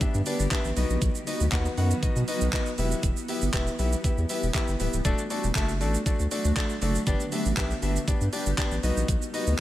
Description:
dance-pop; 119 BPM; 4/4; straight; E minor; A4 = 437 Hz
warm concert grand piano; accompaniment; 0.0-9.5 s; A3 to F#5; -30 LUFS; left 2 dB; sidechain pumping
granular cloud pad; sustained chords; 0.0-9.6 s; D3 to G4; -34 LUFS; right 2 dB; built-in reverb, sidechain pumping
saturated sub bass; bass; 0.0-9.5 s; C#1 to B2; -26 LUFS; equal; sidechain pumping
pop drum kit; drums; 0.0-9.6 s; handclaps, hi-hat, kick drum, shaker; -28 LUFS; equal; overdrive
downlifter; sound effects; 0.0-1.0 s; barely audible
digital ambience; -24 LUFS; side -14 dB against mid
0.0-9.6 A section
0.0 G; 0.8 B; 2.8 Em; 5.0 D; 7.1 G; 8.8 B

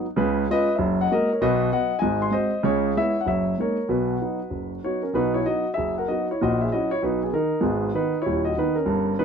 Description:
jazz, stride piano; 193 BPM; 4/4; swing 63% on 8ths; B major; A4 = 439 Hz
warm concert grand piano; solo; 0.0-9.2 s; D#1 to B#5; -21 LUFS; equal
moderate small room ambience, RT60 0.5 s; -21 LUFS; side -6 dB against mid
0.0-5.1 A section; 5.1-9.2 A section
0.2 C#7; 0.8 F#add9; 1.4 B; 2.0 G#7; 2.7 C#m7; 3.3 F#13; 3.9 B; 6.4 F#7/A#; 7.0 B; 7.6 G#m

